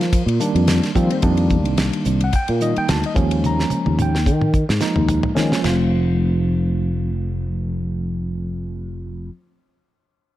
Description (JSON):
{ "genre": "electric jazz fusion", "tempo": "109 BPM", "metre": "4/4", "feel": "swing 55% on 16ths", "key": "F mixolydian", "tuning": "A4 = 440 Hz", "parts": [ { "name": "tine electric piano", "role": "accompaniment", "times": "0.0-9.3 s", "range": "Eb3 to Bb5", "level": "-22 LUFS", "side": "equal", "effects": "medium stereo tremolo" }, { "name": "sustaining fretless electric bass", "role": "bass", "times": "0.0-9.3 s", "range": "F1 to F3", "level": "-20 LUFS", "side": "equal", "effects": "lush chorus" }, { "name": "damped 70s drum kit", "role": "drums", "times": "0.0-5.8 s", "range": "crash cymbal, hi-hat, kick drum, ride cymbal, snare drum, toms", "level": "-22 LUFS", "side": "equal", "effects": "none" }, { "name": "electric guitar at the edge of break-up", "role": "stabs", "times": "1.1-1.2 s", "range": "C4", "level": "-32 LUFS", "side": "right 2 dB", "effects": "none" } ], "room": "small room ambience", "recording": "dark, warm production", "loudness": "-17 LUFS", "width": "side -14 dB against mid", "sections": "0.0-5.6 A section; 5.6-10.0 B section", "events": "drum fill 3.4-5.6", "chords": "0.0 F9sus4; 3.2 Eb9sus4; 5.6 F", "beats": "0.12 0.68 | 1.23 1.78 2.33 2.88 | 3.43 3.98 4.53 5.08 | 5.63 6.19 6.74 7.29 | 7.84 8.39 8.94" }